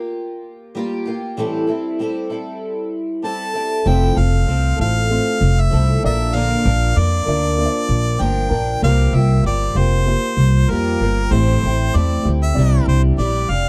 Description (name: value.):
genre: acoustic pop.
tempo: 96 BPM.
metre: 4/4.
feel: straight.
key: unclear.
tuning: A4 = 440 Hz.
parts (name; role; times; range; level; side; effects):
picked twelve-string acoustic guitar; accompaniment; 0.0-13.7 s; A2 to Bb4; -25 LUFS; equal; double-tracked.
clear harmonica; melody; 3.2-13.7 s; Bb4 to A5; -25 LUFS; equal; none.
warm upright piano; accompaniment; 3.8-13.7 s; A3 to D5; -28 LUFS; equal; none.
upright bass; bass; 3.9-13.7 s; F1 to F2; -18 LUFS; equal; none.
room: little or no reverb.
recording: dry, close 1970s-style studio recording.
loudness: -18 LUFS.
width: mono.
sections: 0.0-13.7 A section.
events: none.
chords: 0.0 C7sus4 (rootless); 1.4 Am7; 3.9 Fmaj7; 6.0 Bb; 8.8 C7sus4; 11.3 Am7; 12.6 Cadd9.